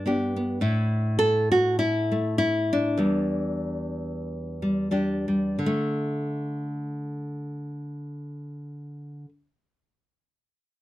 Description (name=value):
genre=folk, solo fingerstyle acoustic guitar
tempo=86-104 BPM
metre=4/4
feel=swing 55% on 8ths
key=unclear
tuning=A4 = 437 Hz
part: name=nylon-string guitar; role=solo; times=0.0-9.3 s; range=E2 to A4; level=-24 LUFS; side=equal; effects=none
room=light reverb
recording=dry, close 1970s-style studio recording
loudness=-24 LUFS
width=side -15 dB against mid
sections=0.0-5.6 A section; 5.6-8.4 B section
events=slowing down 0.6-5.6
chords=0.0 G; 0.6 A5; 3.0 Em7; 5.6 N.C.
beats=0.04 | 0.62 1.20 1.78 2.37 | 2.98 3.60 4.24 4.90 | 5.58 6.28 6.97 7.67